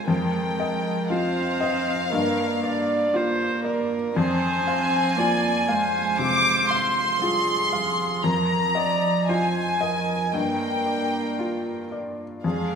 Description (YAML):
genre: neoclassical piano and strings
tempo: 59 BPM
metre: 4/4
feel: rubato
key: unclear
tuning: A4 = 443 Hz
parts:
  - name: warm chamber violin section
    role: melody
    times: 0.0-12.8 s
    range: F5 to D6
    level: -24 LUFS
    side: left 2 dB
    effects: none
  - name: warm cello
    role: second line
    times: 0.0-12.8 s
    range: F3 to C4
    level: -29 LUFS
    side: right 5 dB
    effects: none
  - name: felt-muted upright piano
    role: accompaniment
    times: 0.0-12.8 s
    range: F2 to F5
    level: -26 LUFS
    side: left 2 dB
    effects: none
  - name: warm viola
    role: accompaniment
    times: 0.0-12.8 s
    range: Ab4 to D5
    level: -28 LUFS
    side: right 3 dB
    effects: none
room: wet recital hall reverb, RT60 1.5 s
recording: minimal, uncompressed stereo recording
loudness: -21 LUFS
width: side -6 dB against mid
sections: 0.0-12.8 A section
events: none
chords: 0.1 Bbsus4/F; 2.1 Gm7; 4.2 Fm; 8.2 Bbsus4/F; 10.3 Gm7